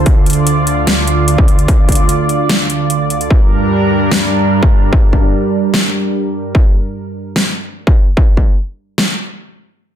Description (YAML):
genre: heavy wobble dubstep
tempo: 148 BPM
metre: 4/4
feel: half-time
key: unclear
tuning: A4 = 439 Hz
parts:
  - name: lush unison pad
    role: sustained chords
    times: 0.0-6.5 s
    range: D2 to D5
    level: -14 LUFS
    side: right 2 dB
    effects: chorus, sidechain pumping
  - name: dubstep drum kit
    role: drums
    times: 0.1-9.1 s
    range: hi-hat, snare drum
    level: -16 LUFS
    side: equal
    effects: small room ambience
  - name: electronic kick drum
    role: drums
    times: 0.1-8.5 s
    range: none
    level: -10 LUFS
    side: equal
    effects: distortion, small room ambience
room: light reverb, digital ambience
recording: dense, heavily limited modern master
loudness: -11 LUFS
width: side -10 dB against mid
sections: 0.0-9.8 A section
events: none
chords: 0.0 Dm; 3.3 Gm